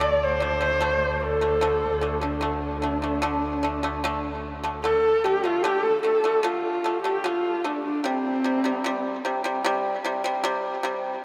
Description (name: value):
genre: mongolian traditional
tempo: 75 BPM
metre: 4/4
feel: straight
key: D yu mode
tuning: A4 = 440 Hz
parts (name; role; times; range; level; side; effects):
- warm horsehead fiddle; melody; 0.0-9.2 s; C4 to D5; -26 LUFS; equal; none
- pipa; arpeggios; 0.0-11.2 s; C3 to A3; -30 LUFS; equal; tape echo
- bright double bass; drone; 0.0-4.9 s; D2; -36 LUFS; equal; none
room: wet huge ambient reverb, RT60 8.5 s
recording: in a vast, echoing space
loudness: -25 LUFS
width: mono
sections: 0.0-4.8 A section; 4.8-11.2 B section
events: none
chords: 0.0 D5; 8.1 C5